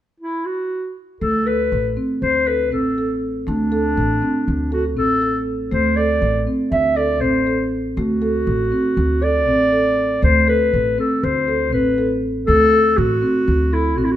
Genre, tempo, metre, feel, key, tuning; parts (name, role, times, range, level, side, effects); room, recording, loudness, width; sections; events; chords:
contemporary instrumental, contemporary; 240 BPM (eighths); 9/8; straight; D mixolydian; A4 = 440 Hz
mellow clarinet; melody; 0.2-14.2 s; D4 to E5; -18 LUFS; left 1 dB
marimba with soft mallets; arpeggios; 1.2-14.2 s; A3 to A4; -20 LUFS; right 1 dB
upright bass; bass; 1.2-14.2 s; A1 to D2; -23 LUFS; equal
moderate recital hall reverb, RT60 1.5 s; -16 LUFS; side -12 dB against mid
0.0-1.2 A section; 1.2-14.2 B section
0.0 N.C.; 1.2 D7(no3)